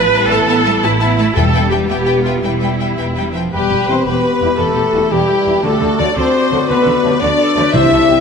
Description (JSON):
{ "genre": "cinematic, heroic adventure film score", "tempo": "114 BPM (dotted quarters)", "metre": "6/8", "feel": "straight", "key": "unclear", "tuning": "A4 = 440 Hz", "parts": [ { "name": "rich symphonic violin section", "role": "melody", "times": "0.0-8.2 s", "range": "G4 to A5", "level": "-20 LUFS", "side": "left 6 dB", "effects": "none" }, { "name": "clear symphonic violin section", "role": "second line", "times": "0.0-8.2 s", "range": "G4 to E5", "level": "-25 LUFS", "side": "left 5 dB", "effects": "none" }, { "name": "rich studio viola section", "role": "accompaniment", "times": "0.0-8.2 s", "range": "E4 to C5", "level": "-18 LUFS", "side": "right 2 dB", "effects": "none" }, { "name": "mellow French horn section", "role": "sustained chords", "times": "0.0-8.2 s", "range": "G3 to G4", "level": "-18 LUFS", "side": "left 3 dB", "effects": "none" }, { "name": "rich symphonic cello section", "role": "bass", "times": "0.0-8.2 s", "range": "E2 to B3", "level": "-22 LUFS", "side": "right 3 dB", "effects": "none" }, { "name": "rich symphonic double bass section", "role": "bass", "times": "0.0-8.2 s", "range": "E1 to D2", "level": "-22 LUFS", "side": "right 3 dB", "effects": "none" }, { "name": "timpani", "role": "percussion", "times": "1.4-1.9, 7.7-8.2 s", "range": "E2 to C3", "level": "-19 LUFS", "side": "left 1 dB", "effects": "none" }, { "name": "clear clarinet", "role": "second line", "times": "3.5-8.2 s", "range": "F#4 to G4", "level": "-25 LUFS", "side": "left 2 dB", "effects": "none" }, { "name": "mellow cor anglais", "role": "second line", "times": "3.5-8.2 s", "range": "B4 to D5", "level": "-24 LUFS", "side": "right 1 dB", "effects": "none" }, { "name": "mellow hollow flute section", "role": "second line", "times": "3.5-8.2 s", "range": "G4 to E5", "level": "-23 LUFS", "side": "left 3 dB", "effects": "none" }, { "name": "mellow trumpet", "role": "stabs", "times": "3.5-8.2 s", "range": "G4 to E5", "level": "-19 LUFS", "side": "right 1 dB", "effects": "none" }, { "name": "mellow trombone section", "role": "sustained chords", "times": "3.9-8.1 s", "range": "F#3 to E4", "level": "-26 LUFS", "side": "right 3 dB", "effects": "none" } ], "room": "moderate scoring stage reverb, RT60 1.8 s", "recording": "none", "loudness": "-12 LUFS", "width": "side -6 dB against mid", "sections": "0.0-3.5 A section; 3.5-8.2 B section", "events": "none", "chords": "0.0 Asus2; 1.4 Em; 5.6 D" }